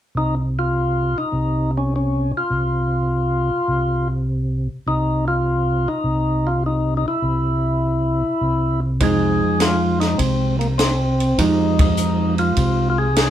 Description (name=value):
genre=soul jazz organ trio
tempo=101 BPM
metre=4/4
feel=swing 69% on 8ths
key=F minor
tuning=A4 = 440 Hz
part: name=tonewheel organ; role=bass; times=0.1-13.3 s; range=C2 to F2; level=-20 LUFS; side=equal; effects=chorus vibrato, slow rotary speaker
part: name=percussive tonewheel organ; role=melody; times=0.2-13.3 s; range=Bb3 to Ab4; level=-21 LUFS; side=left 1 dB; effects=slow rotary speaker
part: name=vintage hollow-body jazz guitar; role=accompaniment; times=9.0-13.1 s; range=F3 to G4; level=-22 LUFS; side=right 3 dB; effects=none
part: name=compact cocktail drum kit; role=drums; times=9.0-13.3 s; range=hi-hat, kick drum, ride cymbal, snare drum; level=-22 LUFS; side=equal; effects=none
room=moderate studio reverb, RT60 0.5 s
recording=heard from further back in the room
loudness=-17 LUFS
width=side -11 dB against mid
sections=0.0-9.0 A section; 9.0-13.3 B section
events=band accent 11.7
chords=0.0 Csus4; 9.0 Fm9